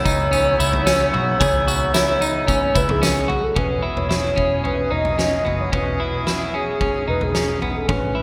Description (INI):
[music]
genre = dream pop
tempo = 111 BPM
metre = 4/4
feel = straight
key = unclear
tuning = A4 = 440 Hz
[part]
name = warbly nostalgic lead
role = melody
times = 0.0-8.2 s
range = G#4 to D#5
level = -25 LUFS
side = equal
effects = chorus, digital delay
[part]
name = clear woodwind section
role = sustained chords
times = 0.0-8.2 s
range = C#3 to G#4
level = -28 LUFS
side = equal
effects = none
[part]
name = clean electric guitar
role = arpeggios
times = 0.0-8.2 s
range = B3 to G#4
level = -26 LUFS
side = equal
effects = subtle chorus, digital delay
[part]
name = vintage muted fingered electric bass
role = bass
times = 0.0-8.2 s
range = E1 to C#2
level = -28 LUFS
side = equal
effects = none
[part]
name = oversized low-tuned drum kit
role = drums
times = 0.1-8.0 s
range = kick drum, snare drum, tambourine, toms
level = -26 LUFS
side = equal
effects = gated reverb
[sound]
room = wet lush hall reverb, RT60 1.8 s, small room ambience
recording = bright 1980s-style digital production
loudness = -20 LUFS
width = mono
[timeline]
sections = 0.0-3.6 A section; 3.6-8.2 B section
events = none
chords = 0.0 C#m7; 3.6 E6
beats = 0.32 0.86 | 1.40 1.95 2.48 3.03 | 3.57 4.11 4.65 5.19 | 5.73 6.27 6.81 7.35 | 7.89